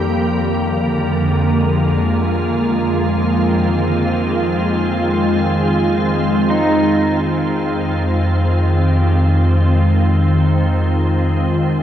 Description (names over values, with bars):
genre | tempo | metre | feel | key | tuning
ambient | free time | none | none | F dorian | A4 = 439 Hz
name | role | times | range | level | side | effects
soft additive organ-like pad | sustained chords | 0.0-11.8 s | F2 to G4 | -15 LUFS | equal | ensemble chorus, built-in reverb
pedal steel guitar | melody | 6.5-11.8 s | Eb4 to Bb4 | -22 LUFS | right 1 dB | tape echo
warm sub bass | bass | 7.2-11.8 s | F2 | -15 LUFS | equal | none
room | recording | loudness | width
wet huge ambient reverb, RT60 7.6 s | in a vast, echoing space, cassette tape | -14 LUFS | side -10 dB against mid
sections
0.0-7.2 A section; 7.2-11.8 B section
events
fade-in on pedal steel guitar 7.2-11.8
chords
0.2 Bb7/F; 2.5 Ab6/F; 7.2 Fm7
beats
free time